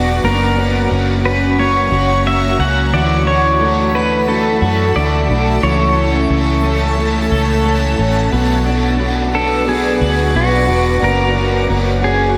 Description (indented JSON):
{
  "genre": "dream pop",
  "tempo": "89 BPM",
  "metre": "4/4",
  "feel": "straight",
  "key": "unclear",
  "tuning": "A4 = 442 Hz",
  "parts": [
    { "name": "pedal steel guitar", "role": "melody", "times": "0.0-12.4 s", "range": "F#4 to F#5", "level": "-20 LUFS", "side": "equal", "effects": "analog chorus, delay" },
    { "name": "overdriven semi-hollow guitar", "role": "accompaniment", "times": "0.0-12.4 s", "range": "F#2 to A4", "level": "-24 LUFS", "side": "equal", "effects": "harmonic tremolo, ensemble chorus" },
    { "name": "granular cloud pad", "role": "sustained chords", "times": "0.0-12.4 s", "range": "A4 to D6", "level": "-24 LUFS", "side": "equal", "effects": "built-in reverb, subtle chorus" },
    { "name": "twelve-string electric guitar", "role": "arpeggios", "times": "0.0-12.4 s", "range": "E3 to A4", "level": "-22 LUFS", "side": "equal", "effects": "analog chorus, delay" },
    { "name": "vintage muted fingered electric bass", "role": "bass", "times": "0.0-12.4 s", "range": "E1 to F#2", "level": "-20 LUFS", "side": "equal", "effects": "none" },
    { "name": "twinkling granular texture", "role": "texture", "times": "3.6-8.6 s", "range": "F#5 to C#6", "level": "-31 LUFS", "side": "equal", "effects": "built-in reverb, delay" }
  ],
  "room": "wet lush hall reverb, RT60 3.3 s",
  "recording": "dreamy mix soaked in reverb",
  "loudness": "-15 LUFS",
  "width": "mono",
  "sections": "0.0-12.4 A section",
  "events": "none",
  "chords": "0.2 F#; 2.9 Dadd9; 5.6 A/C#; 8.3 Bm; 11.0 F#",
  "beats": "| 0.24 0.91 1.58 2.26 | 2.93 3.61 4.28 4.96 | 5.63 6.30 6.98 7.65 | 8.32 9.00 9.67 10.35 | 11.02 11.70 12.37"
}